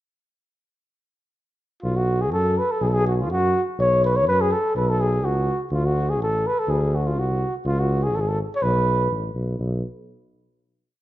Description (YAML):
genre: balkan folk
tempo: 124 BPM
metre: 2/4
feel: straight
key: B dorian sharp4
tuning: A4 = 438 Hz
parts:
  - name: dark trumpet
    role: melody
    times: 1.8-9.1 s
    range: E#4 to C#5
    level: -22 LUFS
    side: equal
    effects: none
  - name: mellow tuba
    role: bass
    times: 1.8-9.8 s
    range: G#1 to F#2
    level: -23 LUFS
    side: equal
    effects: none
room: moderate recital hall reverb, RT60 1.5 s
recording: dark, warm production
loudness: -20 LUFS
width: side -14 dB against mid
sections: 1.8-9.6 A section; 9.6-10.6 final note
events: none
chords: 1.8 B5; 5.7 D5; 7.7 C#5; 8.6 Asus2; 9.6 N.C.